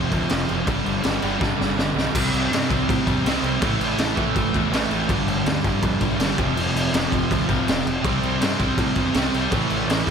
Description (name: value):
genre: punk rock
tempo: 163 BPM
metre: 4/4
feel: straight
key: unclear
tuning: A4 = 437 Hz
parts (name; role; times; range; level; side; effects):
- crunchy overdriven guitar; riff; 0.0-10.1 s; F2 to C4; -25 LUFS; right 9 dB; none
- distorted electric guitar; riff; 0.0-10.1 s; F2 to C4; -28 LUFS; left 1 dB; distortion
- sludgy distorted guitar; riff; 0.0-10.1 s; F2 to C4; -28 LUFS; left 10 dB; overdrive
- growling picked electric bass; bass; 0.0-10.1 s; F1 to A2; -29 LUFS; left 1 dB; overdrive
- raw garage drum kit; drums; 0.1-10.1 s; crash cymbal, kick drum, snare drum; -23 LUFS; left 1 dB; none
room: moderate lush hall reverb, RT60 1.8 s, small room reverb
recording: big arena sound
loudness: -19 LUFS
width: side -6 dB against mid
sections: 0.0-2.1 A section; 2.1-10.1 B section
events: drum fill 1.4-2.1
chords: 0.0 F5; 0.7 G5; 2.1 C5; 3.6 A5; 5.1 G5; 6.4 F5; 8.0 C5; 9.5 A5